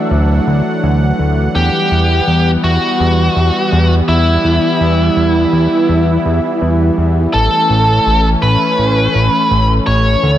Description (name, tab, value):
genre	synthwave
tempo	83 BPM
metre	4/4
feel	straight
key	E dorian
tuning	A4 = 440 Hz
part	biting lead guitar	melody	0.0-10.4 s	E4 to E5	-15 LUFS	equal	overdrive, ping-pong delay
part	warm analog pad	sustained chords	0.0-10.4 s	D3 to F#5	-16 LUFS	equal	chorus
part	fat analog bass	bass	0.1-10.4 s	A1 to E2	-13 LUFS	equal	tube saturation
room	light reverb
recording	none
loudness	-10 LUFS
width	side -12 dB against mid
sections	0.0-10.4 A section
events	none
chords	0.0 Dadd9; 1.6 Emadd9; 7.3 A